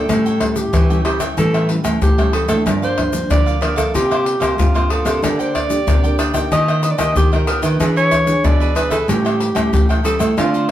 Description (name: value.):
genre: samba and choro.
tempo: 93 BPM.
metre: 4/4.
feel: straight.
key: unclear.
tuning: A4 = 440 Hz.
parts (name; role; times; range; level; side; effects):
breathy alto saxophone; melody; 0.0-10.7 s; F4 to Eb5; -20 LUFS; right 1 dB; none.
cavaquinho; accompaniment; 0.0-10.7 s; D4 to G5; -26 LUFS; right 3 dB; none.
nylon-string guitar; accompaniment; 0.0-10.7 s; G2 to G#4; -24 LUFS; left 2 dB; none.
nylon-string guitar; bass; 0.0-10.7 s; G2 to E3; -20 LUFS; right 1 dB; none.
agogo bells, egg shaker, surdo, pandeiro and tamborim; percussion; 0.1-10.7 s; none; -18 LUFS; left 1 dB; none.
room: wet studio reverb, RT60 0.6 s.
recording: heard from further back in the room.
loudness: -14 LUFS.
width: side -12 dB against mid.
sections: 0.0-10.7 A section.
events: none.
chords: 0.1 A7; 2.7 Gm7; 3.9 C7sus4; 5.2 Gm/D; 6.5 Eb; 7.8 E7; 9.1 A7.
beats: | 0.09 0.73 1.38 2.02 | 2.66 3.30 3.94 4.59 | 5.23 5.87 6.51 7.16 | 7.80 8.44 9.09 9.73 | 10.37.